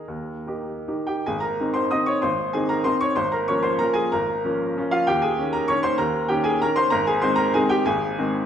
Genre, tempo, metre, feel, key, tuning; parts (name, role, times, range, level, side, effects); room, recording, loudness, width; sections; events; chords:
classical, piano waltz; 145-205 BPM; 3/4; rubato; Ab major; A4 = 441 Hz
bright upright piano; solo; 0.0-8.5 s; Ab1 to Eb6; -20 LUFS; equal
wet recital hall reverb, RT60 1.4 s; heard from further back in the room; -20 LUFS; side -9 dB against mid
0.0-1.3 A section; 1.3-8.5 B section
0.1 Eb; 1.3 Ab; 3.2 Bbm/Ab; 5.1 Eb7; 6.9 Ab